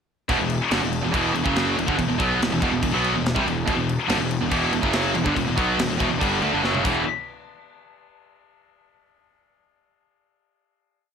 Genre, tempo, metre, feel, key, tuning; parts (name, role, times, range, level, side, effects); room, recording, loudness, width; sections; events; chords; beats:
heavy metal; 142 BPM; 4/4; straight; E minor; A4 = 440 Hz
high-gain distorted guitar; riff; 0.3-7.0 s; E2 to B3; -27 LUFS; left 1 dB; distortion
scooped high-gain guitar; riff; 0.3-7.0 s; E2 to B3; -25 LUFS; left 9 dB; distortion
tight distorted guitar; riff; 0.3-7.0 s; E2 to B3; -26 LUFS; right 12 dB; distortion
fuzz picked electric bass; bass; 0.3-7.0 s; E1 to D2; -28 LUFS; equal; overdrive
tight metal drum kit; drums; 0.3-7.0 s; crash cymbal, kick drum, snare drum, toms; -28 LUFS; equal
light reverb, studio reverb; -20 LUFS; side -7 dB against mid
0.3-7.1 riff; 7.1-8.8 final hit
drum fill 6.6-7.1
0.3 Em; 6.8 E5; 7.1 N.C.
| 0.29 0.72 1.14 1.56 | 1.99 2.41 2.83 3.26 | 3.68 4.10 4.52 4.94 | 5.37 5.79 6.21 6.63